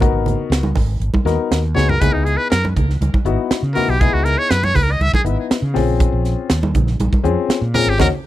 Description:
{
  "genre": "electric jazz fusion",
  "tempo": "120 BPM",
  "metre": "4/4",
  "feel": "straight",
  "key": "unclear",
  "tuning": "A4 = 440 Hz",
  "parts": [
    { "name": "warm grand piano", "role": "accompaniment", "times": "0.0-8.1 s", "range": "Cb4 to Cb5", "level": "-21 LUFS", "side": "left 8 dB", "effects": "none" },
    { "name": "fretless electric bass", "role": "bass", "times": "0.0-8.1 s", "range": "Ab1 to Db3", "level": "-19 LUFS", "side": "equal", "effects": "none" },
    { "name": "crisp fusion drum kit", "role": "drums", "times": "0.0-8.1 s", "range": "hi-hat, kick drum, snare drum, toms", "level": "-19 LUFS", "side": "right 1 dB", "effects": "none" },
    { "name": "congas", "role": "percussion", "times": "0.0-8.1 s", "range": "none", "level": "-24 LUFS", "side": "right 4 dB", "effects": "none" },
    { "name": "trumpet with metal mute", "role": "melody", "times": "1.7-8.1 s", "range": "Eb4 to Fb5", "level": "-19 LUFS", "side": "equal", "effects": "none" }
  ],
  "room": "light reverb",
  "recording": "dry, close 1970s-style studio recording",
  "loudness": "-15 LUFS",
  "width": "side -14 dB against mid",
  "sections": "0.0-8.3 A section",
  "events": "muted trumpet solo 0.0-8.3; drum fill 1.8; band accent 8.0",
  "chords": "0.0 Abm9; 2.0 Dbm9; 5.8 Bbm9"
}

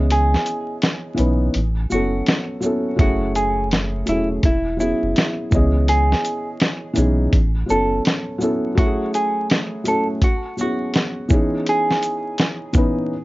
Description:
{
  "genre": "lo-fi hip hop",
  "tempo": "83 BPM",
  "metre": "4/4",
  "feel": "swing 60% on 16ths",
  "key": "unclear",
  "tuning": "A4 = 440 Hz",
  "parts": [
    { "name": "vintage hollow-body jazz guitar", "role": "melody", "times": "0.0-12.6 s", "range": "E4 to A4", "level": "-23 LUFS", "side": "right 1 dB", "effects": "low-pass filter" },
    { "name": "felt-muted upright piano", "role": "accompaniment", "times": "0.0-13.1 s", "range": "E3 to D#5", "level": "-22 LUFS", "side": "equal", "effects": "low-pass filter" },
    { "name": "soft dub sub bass", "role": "bass", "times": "0.0-8.0 s", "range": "E1 to C#2", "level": "-20 LUFS", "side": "equal", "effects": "none" },
    { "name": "lo-fi sampler-style drum kit", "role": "drums", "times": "0.1-13.0 s", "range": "hi-hat, kick drum, shaker, snare drum", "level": "-19 LUFS", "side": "equal", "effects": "none" }
  ],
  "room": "light reverb",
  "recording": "vinyl crackle, nothing above 7.5 kHz",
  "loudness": "-17 LUFS",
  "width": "side -19 dB against mid",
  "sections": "0.0-13.2 A section",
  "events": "break 0.1-3.0",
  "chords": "0.0 C#m9; 1.5 A69; 3.0 F#m9; 4.4 E69; 5.5 C#m9; 7.3 A69; 8.8 F#m9; 10.2 E69; 11.3 C#m9"
}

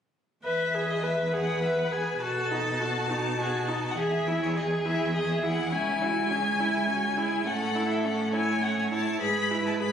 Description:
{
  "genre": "quick classical-period movement for string quartet",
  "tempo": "69 BPM (dotted quarters)",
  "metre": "6/8",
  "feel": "straight",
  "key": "E major",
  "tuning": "A4 = 440 Hz",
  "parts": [
    { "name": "rich viola", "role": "accompaniment", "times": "0.4-9.9 s", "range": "C#4 to B4", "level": "-30 LUFS", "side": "right 1 dB", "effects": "none" },
    { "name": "rich violin", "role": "melody", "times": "0.5-9.9 s", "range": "C#5 to B5", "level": "-30 LUFS", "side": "left 4 dB", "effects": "none" },
    { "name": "rich cello", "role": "bass", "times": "0.5-9.9 s", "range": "C#2 to B2", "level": "-31 LUFS", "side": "right 2 dB", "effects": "none" },
    { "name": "rich violin", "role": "second line", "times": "1.3-9.9 s", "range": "E4 to C#5", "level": "-33 LUFS", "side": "left 1 dB", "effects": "none" }
  ],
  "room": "moderate concert hall reverb, RT60 1.7 s",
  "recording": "recorded on a phone in the room, studio reverb, compression",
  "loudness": "-25 LUFS",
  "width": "side -8 dB against mid",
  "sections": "0.4-9.9 A section",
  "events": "none",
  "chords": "0.4 E; 2.2 B7; 4.0 E; 5.7 C#m; 7.5 A; 9.2 E/G#"
}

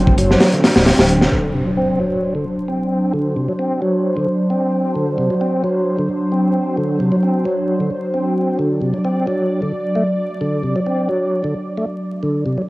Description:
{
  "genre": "breakbeat, breaks",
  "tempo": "132 BPM",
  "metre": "4/4",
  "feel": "straight",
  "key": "unclear",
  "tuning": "A4 = 440 Hz",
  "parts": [
    { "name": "lush unison pad", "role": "sustained chords", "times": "0.0-12.7 s", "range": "F#3 to D5", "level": "-19 LUFS", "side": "equal", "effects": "chorus, phaser, sidechain pumping, cassette tape" },
    { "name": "tonewheel organ", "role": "riff", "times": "0.0-12.6 s", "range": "C3 to C4", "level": "-20 LUFS", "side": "equal", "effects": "overdrive, fast rotary speaker, vintage 12-bit sampler grit, low-pass filter, cassette tape, analog delay" },
    { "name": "dark detuned saw bass", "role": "bass", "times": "0.0-1.3 s", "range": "D1 to F#1", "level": "-17 LUFS", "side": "equal", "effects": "none" },
    { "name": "crunchy breakbeat drum kit", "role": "drums", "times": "0.1-1.3 s", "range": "hi-hat, kick drum, snare drum", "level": "-13 LUFS", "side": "equal", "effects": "none" },
    { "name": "impact", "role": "sound effects", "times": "1.3-3.1 s", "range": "none", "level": "-26 LUFS", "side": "equal", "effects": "none" }
  ],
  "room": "wet studio reverb, RT60 0.5 s",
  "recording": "home recording on cassette, vinyl crackle",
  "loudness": "-15 LUFS",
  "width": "side -20 dB against mid",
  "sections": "0.0-1.3 A section; 1.3-12.7 B section",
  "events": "impact 1.3-3.1",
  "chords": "0.0 D7"
}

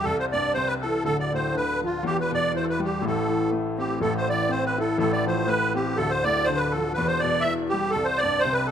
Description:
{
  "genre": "celtic folk",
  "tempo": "122 BPM",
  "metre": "2/4",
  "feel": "swing 56% on 8ths",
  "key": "A minor",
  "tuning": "A4 = 440 Hz",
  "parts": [
    { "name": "musette accordion", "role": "melody", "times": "0.0-8.7 s", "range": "F4 to E5", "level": "-24 LUFS", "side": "right 2 dB", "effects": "none" },
    { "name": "bright grand piano", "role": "accompaniment", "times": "0.0-8.7 s", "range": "D1 to E4", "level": "-26 LUFS", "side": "left 2 dB", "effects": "none" }
  ],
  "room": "moderate recital hall reverb, RT60 1.6 s",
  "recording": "close, detailed microphones",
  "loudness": "-22 LUFS",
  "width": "side -9 dB against mid",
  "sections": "0.0-4.0 A section; 4.0-8.7 A section",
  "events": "none",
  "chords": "0.0 C; 1.0 Dm; 2.0 Em; 3.0 Am; 5.0 F/A; 6.0 Dm; 7.0 Em; 7.9 C5"
}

